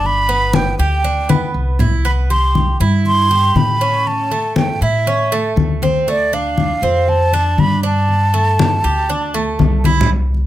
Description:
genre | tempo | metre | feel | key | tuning
latin, Cuban son and guajira | 119 BPM | 4/4 | straight | unclear | A4 = 440 Hz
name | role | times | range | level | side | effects
breathy mellow silver concert flute | melody | 0.0-9.8 s | D5 to C6 | -17 LUFS | right 1 dB | none
Cuban tres | arpeggios | 0.0-10.1 s | A3 to G4 | -20 LUFS | right 3 dB | none
upright bass | bass | 0.0-10.5 s | G1 to A2 | -17 LUFS | equal | none
congas | percussion | 0.0-10.5 s | none | -19 LUFS | left 3 dB | none
room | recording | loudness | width
light reverb | close, detailed microphones | -13 LUFS | side -13 dB against mid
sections
0.0-10.1 A section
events
drum fill 1.3-2.0, 9.8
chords
0.0 G; 2.0 Cmaj7; 4.1 A; 6.1 Dm7; 8.1 Gsus2

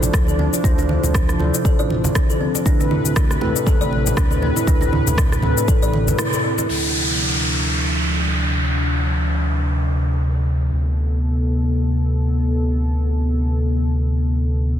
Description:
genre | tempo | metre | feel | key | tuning
afro house | 119 BPM | 4/4 | swing 57% on 16ths | D dorian | A4 = 437 Hz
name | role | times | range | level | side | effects
warm analog pad | sustained chords | 0.0-14.8 s | A2 to B4 | -23 LUFS | left 1 dB | chorus, sidechain pumping
mellow tine electric piano | stabs | 0.0-6.7 s | C4 to C5 | -27 LUFS | right 3 dB | medium stereo tremolo, sidechain pumping, low-pass filter, dub echo
smooth synth bass | bass | 0.0-14.8 s | A1 to D2 | -20 LUFS | equal | sidechain pumping
afro-pop drum kit | drums | 0.0-6.8 s | crash cymbal, rim click, shaker | -26 LUFS | left 2 dB | low-pass filter on perc, soft clipping on snare, low-pass filter on snare, low-pass filter on cymbals
congas | percussion | 0.0-6.7 s | none | -27 LUFS | right 2 dB | none
kalimba | arpeggios | 0.1-6.6 s | C4 to D5 | -26 LUFS | equal | sidechain pumping, dub echo
electronic kick drum | drums | 0.1-5.8 s | none | -18 LUFS | equal | none
downlifter | sound effects | 6.7-10.7 s | none | -23 LUFS | right 1 dB | none
room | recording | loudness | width
light reverb | dense, heavily limited modern master | -16 LUFS | side -10 dB against mid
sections
0.0-6.7 A section; 6.7-14.8 B section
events
filter sweep on tine electric piano 0.0-6.7; break 6.2-6.7; band accent 6.2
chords
0.0 Dm7; 2.7 Amadd9; 6.7 Dm7; 10.7 Amadd9/D

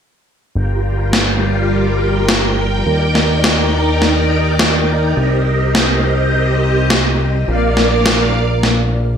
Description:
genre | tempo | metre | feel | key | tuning
synthwave | 104 BPM | 4/4 | straight | G minor | A4 = 440 Hz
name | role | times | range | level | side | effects
string machine, full ensemble | sustained chords | 0.6-9.2 s | G3 to G5 | -16 LUFS | equal | phaser, ensemble chorus
fat analog bass | bass | 0.6-9.2 s | G1 to Eb2 | -17 LUFS | equal | none
electronic snare drum | drums | 1.1-8.7 s | none | -16 LUFS | equal | gated reverb, gated reverb snare
room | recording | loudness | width
light reverb | none | -12 LUFS | side -7 dB against mid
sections
0.6-9.2 A section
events
filter sweep on analog synth bass 0.6-9.2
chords
0.6 Gm7; 2.9 Ebmaj7; 5.2 Cm7; 7.5 Bb

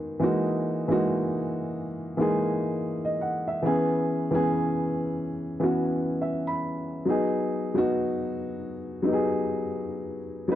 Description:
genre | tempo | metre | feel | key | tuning
R&B | 70 BPM | 4/4 | swing 60% on 16ths | B major | A4 = 440 Hz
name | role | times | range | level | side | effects
dark baby grand piano | solo | 0.0-10.6 s | D#3 to B5 | -25 LUFS | equal | none
room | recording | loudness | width
light reverb | dry, close 1970s-style studio recording | -25 LUFS | side -12 dB against mid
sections
0.0-10.6 A section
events
grand piano fill 5.8-7.1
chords
0.2 Emaj9#11; 3.6 C#m7; 7.1 B6

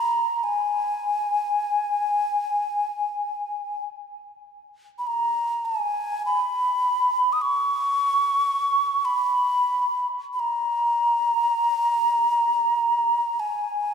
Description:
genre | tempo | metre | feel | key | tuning
world meditative, free-time meditation music | free time | none | none | G# minor | A4 = 440 Hz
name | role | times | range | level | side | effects
breathy mellow alto ocarina | solo | 0.0-13.9 s | G#5 to D#6 | -21 LUFS | equal | diffuse ambient delay
room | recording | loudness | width
wet concert hall reverb, RT60 2.0 s | dark, warm production | -21 LUFS | side -7 dB against mid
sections
0.0-13.9 A section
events
none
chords
none

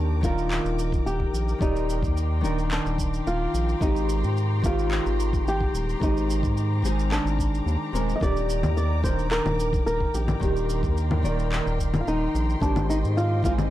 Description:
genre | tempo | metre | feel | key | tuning
sunset chillout | 109 BPM | 4/4 | straight | Eb major | A4 = 439 Hz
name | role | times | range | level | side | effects
flamenco guitar | melody | 0.0-13.5 s | D4 to Eb5 | -29 LUFS | equal | analog delay
nylon-string guitar | accompaniment | 0.0-13.7 s | Eb3 to D5 | -30 LUFS | equal | auto-pan
warm studio string section | sustained chords | 0.0-13.7 s | Ab3 to D6 | -36 LUFS | left 2 dB | none
round analog bass | bass | 0.0-13.7 s | Eb1 to Ab2 | -26 LUFS | equal | none
wind-like tuned noise texture | texture | 0.7-13.7 s | D6 | -44 LUFS | left 1 dB | built-in reverb
electronic kick drum | drums | 0.2-13.6 s | none | -26 LUFS | equal | none
electronic shaker, handclaps and congas | drums | 0.2-13.7 s | none | -31 LUFS | left 1 dB | none
room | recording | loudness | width
digital ambience | dry, gritty hardware recording | -22 LUFS | side -14 dB against mid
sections
0.0-13.7 A section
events
none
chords
0.0 Ebmaj7; 3.8 Abmaj7; 8.2 Ebmaj7; 12.6 Abmaj7

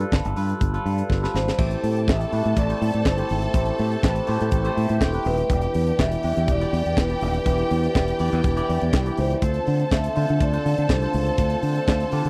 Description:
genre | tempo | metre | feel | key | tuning
disco | 122 BPM | 4/4 | straight | A minor | A4 = 438 Hz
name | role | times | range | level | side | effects
barky tine electric piano | accompaniment | 0.0-12.3 s | D3 to D5 | -31 LUFS | equal | phaser
fingered electric bass | bass | 0.0-12.3 s | D#1 to D3 | -26 LUFS | equal | none
tight funk drum kit | drums | 0.0-12.3 s | crash cymbal, handclaps, hi-hat, kick drum, snare drum | -25 LUFS | equal | none
vibraphone with soft mallets | melody | 1.4-12.3 s | B4 to E5 | -29 LUFS | equal | none
clear studio string section | second line | 1.6-12.3 s | G4 to A5 | -34 LUFS | equal | none
percussive tonewheel organ | sustained chords | 1.6-12.3 s | D3 to G4 | -37 LUFS | equal | none
room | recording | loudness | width
little or no reverb | dry, close 1970s-style studio recording | -22 LUFS | mono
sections
0.0-1.6 A section; 1.6-12.3 B section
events
drum fill 1.1-1.6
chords
0.0 G9; 1.6 Am7; 5.5 Em7; 9.4 Dm7

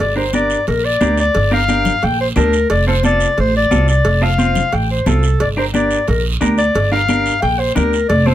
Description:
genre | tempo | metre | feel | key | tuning
latin, cumbia | 178 BPM | 4/4 | straight | G minor | A4 = 441 Hz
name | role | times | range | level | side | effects
warm clarinet | melody | 0.0-8.3 s | A4 to G5 | -16 LUFS | left 2 dB | none
upright bass | bass | 0.0-8.3 s | F1 to D2 | -17 LUFS | right 1 dB | none
cowbell and timbales | percussion | 0.0-8.3 s | none | -25 LUFS | right 2 dB | none
guiro | percussion | 0.0-8.3 s | none | -29 LUFS | right 6 dB | none
clean electric guitar | accompaniment | 0.2-8.3 s | C4 to C5 | -21 LUFS | right 2 dB | none
congas | percussion | 0.3-8.3 s | none | -21 LUFS | left 2 dB | none
room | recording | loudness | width
little or no reverb | close, detailed microphones | -13 LUFS | side -12 dB against mid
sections
0.0-8.3 A section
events
none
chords
0.0 Gm; 2.7 F; 5.4 Gm

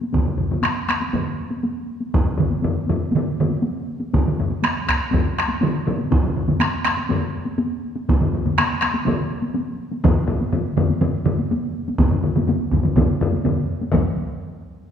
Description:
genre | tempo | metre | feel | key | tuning
japanese traditional, taiko drum ensemble | 122 BPM | 4/4 | straight | none | none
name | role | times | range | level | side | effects
taiko ensemble | percussion | 0.0-14.2 s | none | -25 LUFS | equal | none
solo taiko drums | percussion | 0.1-14.2 s | none | -23 LUFS | right 1 dB | none
taiko ensemble | percussion | 0.1-14.4 s | none | -24 LUFS | left 4 dB | none
taiko ensemble | percussion | 0.1-14.4 s | none | -24 LUFS | right 4 dB | none
room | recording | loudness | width
wet concert hall reverb, RT60 1.8 s | minimal, uncompressed stereo recording | -19 LUFS | side -8 dB against mid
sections
0.0-13.9 A section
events
speeding up 0.0-14.9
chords
none

